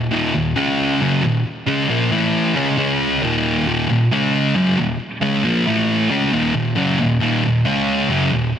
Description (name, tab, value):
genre	rock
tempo	135 BPM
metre	4/4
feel	straight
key	unclear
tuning	A4 = 441 Hz
part	fuzz guitar	solo	0.0-8.5 s	Eb2 to Db4	-16 LUFS	equal	distortion, digital delay
room	light reverb, digital ambience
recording	dense, heavily limited modern master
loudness	-16 LUFS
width	side -8 dB against mid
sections	0.0-8.6 A section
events	none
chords	0.0 Eb5; 0.6 Db5; 1.0 Eb5; 2.1 A5; 2.6 Db5; 3.2 Eb5; 4.1 Db5; 4.5 Eb5; 5.7 A5; 6.1 Eb5; 7.7 Db5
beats	| 0.11 0.56 1.00 1.45 | 1.89 2.33 2.78 3.22 | 3.66 4.11 4.55 4.99 | 5.44 5.88 6.32 6.76 | 7.21 7.65 8.09